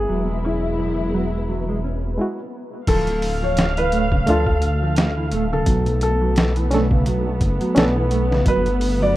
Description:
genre	trip hop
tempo	86 BPM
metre	4/4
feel	swing 57% on 16ths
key	unclear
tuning	A4 = 439 Hz
part	felt-muted upright piano	melody	0.0-9.2 s	E4 to D5	-24 LUFS	left 1 dB	vintage 12-bit sampler grit, tape echo
part	dark studio string section	sustained chords	0.0-9.2 s	F#3 to F5	-25 LUFS	equal	none
part	dark detuned saw bass	bass	0.0-9.2 s	D1 to D2	-22 LUFS	equal	none
part	flickering grainy texture	texture	0.0-2.2 s	B3 to B4	-35 LUFS	left 2 dB	built-in reverb
part	mellow electric guitar	arpeggios	0.1-9.2 s	F#2 to C#4	-26 LUFS	right 3 dB	spring reverb, tape echo
part	barky reed electric piano	accompaniment	2.2-8.0 s	G#3 to A4	-23 LUFS	equal	tremolo, tape echo
part	trip hop sampler-style drum kit	drums	2.9-9.0 s	crash cymbal, hi-hat, kick drum, snare drum	-21 LUFS	equal	none
room	little or no reverb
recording	rough home demo mix, low-pass filter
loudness	-17 LUFS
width	side -15 dB against mid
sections	0.0-2.9 A section; 2.9-9.2 B section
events	break 2.2-2.9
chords	0.1 Eadd9; 2.9 Dm; 5.7 Bm7; 8.5 Gadd9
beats	| 0.09 0.79 1.48 2.18 | 2.88 3.58 4.27 4.97 | 5.67 6.37 7.06 7.76 | 8.46 9.16

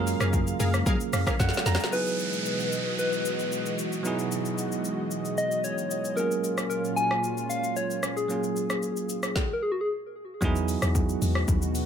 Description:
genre	amapiano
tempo	113 BPM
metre	4/4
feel	straight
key	E major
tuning	A4 = 441 Hz
part	bell-like tine electric piano	accompaniment	0.0-11.9 s	F#3 to A#5	-32 LUFS	right 6 dB	auto-pan
part	lush unison pad	sustained chords	0.0-11.9 s	A#2 to E#5	-33 LUFS	equal	chorus, sidechain pumping
part	punchy chord stab	stabs	0.0-1.4 s	G#4 to E#5	-35 LUFS	equal	chorus, tape echo
part	deep log drum bass	bass	0.0-1.8, 10.4-11.8 s	D#2 to F#3	-27 LUFS	left 1 dB	none
part	deep house drum kit	drums	0.1-11.9 s	hi-hat, kick drum, rim click, shaker, snare drum	-30 LUFS	left 1 dB	none
part	soft struck synth lead	melody	1.9-9.9 s	F#4 to G#5	-29 LUFS	left 2 dB	chorus, tremolo, tape echo
part	downlifter	sound effects	1.9-6.2 s	none	-35 LUFS	right 3 dB	none
room	light reverb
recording	none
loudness	-25 LUFS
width	side -8 dB against mid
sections	0.0-1.9 A section; 1.9-10.4 B section; 10.4-11.9 A section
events	drop 0.0-1.9, 10.4-11.9; tine electric piano fill 0.9-1.9; drum fill 1.4-1.9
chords	0.0 F#maj9; 1.9 Emaj9; 6.2 F#maj9; 10.4 Emaj9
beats	0.33 0.86 1.39 | 1.93 2.46 2.99 3.52 | 4.05 4.58 5.11 5.64 | 6.17 6.70 7.23 7.76 | 8.30 8.83 9.36 9.89 | 10.42 10.95 11.48

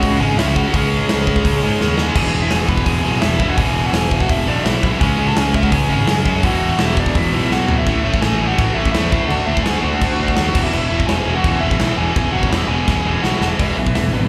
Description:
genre	punk rock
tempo	168 BPM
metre	4/4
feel	straight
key	E mixolydian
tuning	A4 = 445 Hz
part	biting lead guitar	melody	0.0-14.3 s	D4 to B5	-25 LUFS	equal	overdrive, slapback echo, digital delay
part	cranked stack guitar	riff	0.0-14.3 s	E2 to D4	-27 LUFS	equal	none
part	tight distorted guitar	riff	0.0-14.3 s	E2 to D4	-24 LUFS	equal	distortion, slapback echo
part	tight distorted guitar	riff	0.0-14.3 s	E2 to D4	-28 LUFS	equal	none
part	fuzz picked electric bass	bass	0.0-14.2 s	E1 to G#2	-23 LUFS	equal	overdrive
part	big rock drum kit	drums	0.0-14.0 s	crash cymbal, hi-hat, kick drum, snare drum, toms	-22 LUFS	equal	none
room	little or no reverb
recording	live gig heard through the venue's PA, club ambience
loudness	-17 LUFS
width	mono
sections	0.0-7.9 A section; 7.9-13.6 B section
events	drum fill 1.8-2.2, 7.5-7.9, 12.9-13.6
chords	0.0 C#5; 2.2 E; 5.0 C#5; 6.4 E5; 7.9 A5; 9.1 D; 10.5 E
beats	0.03 0.38 | 0.74 1.09 1.45 1.80 | 2.16 2.52 2.87 3.23 | 3.58 3.94 4.29 4.65 | 5.01 5.36 5.72 6.08 | 6.43 6.79 7.15 7.51 | 7.86 8.22 8.58 8.94 | 9.29 9.65 10.01 10.37 | 10.73 11.09 11.44 11.80 | 12.16 12.52 12.88 13.24 | 13.60 13.95

